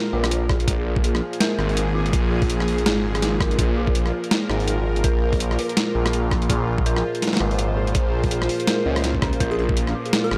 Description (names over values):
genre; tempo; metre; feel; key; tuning
half-time drum and bass; 165 BPM; 4/4; swing 58% on 16ths, half-time; unclear; A4 = 440 Hz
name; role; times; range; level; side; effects
bowed-like drone; sustained chords; 0.0-10.4 s; Bb2 to C5; -30 LUFS; equal; built-in reverb, sidechain pumping
dark detuned synth bell; arpeggios; 0.0-10.4 s; Db4 to Bb4; -31 LUFS; equal; chorus, phaser, tape echo
phased detuned saw bass; bass; 0.1-10.4 s; Ab1 to Db2; -25 LUFS; equal; phaser
boom bap sampler-style drum kit; drums; 0.2-10.4 s; hi-hat, rim click, snare drum; -27 LUFS; equal; overdrive
electronic kick drum; drums; 0.5-9.8 s; none; -25 LUFS; equal; overdrive
plucky unison lead; melody; 9.5-10.4 s; Ab4 to Bb4; -29 LUFS; equal; tape echo
room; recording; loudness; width
light reverb, digital ambience; dry, gritty hardware recording; -21 LUFS; mono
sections
0.0-10.4 A section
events
none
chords
0.0 Bb5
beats
0.31 | 0.68 1.04 1.40 1.77 | 2.13 2.49 2.86 3.22 | 3.58 3.95 4.31 4.68 | 5.04 5.40 5.77 6.13 | 6.49 6.86 7.22 7.58 | 7.95 8.31 8.68 9.04 | 9.40 9.77 10.13